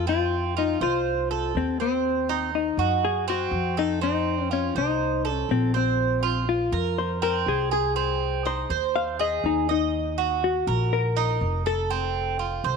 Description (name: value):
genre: latin, Cuban son and guajira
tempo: 122 BPM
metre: 4/4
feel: straight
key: unclear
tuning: A4 = 439 Hz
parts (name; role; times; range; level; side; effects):
- hollow-body jazz guitar; melody; 0.0-12.8 s; C4 to F5; -26 LUFS; left 10 dB; none
- Cuban tres; arpeggios; 0.0-12.8 s; C4 to Eb5; -26 LUFS; right 12 dB; none
- upright bass; bass; 0.0-12.8 s; F1 to Gb2; -29 LUFS; right 1 dB; none
room: moderate plate reverb, RT60 2.7 s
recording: 1960s-style stereo with parts hard left and right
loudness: -22 LUFS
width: side -5 dB against mid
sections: 0.0-12.8 A section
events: none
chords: 0.1 F; 2.0 Cdim/Eb; 4.0 F; 6.0 Bbsus2; 8.0 Ab/C; 9.9 Ebm; 11.9 F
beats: | 0.07 0.57 1.06 1.55 | 2.04 2.54 3.03 3.52 | 4.02 4.51 5.00 5.50 | 5.99 6.48 6.98 7.47 | 7.96 8.46 8.95 9.44 | 9.93 10.43 10.92 11.41 | 11.90 12.40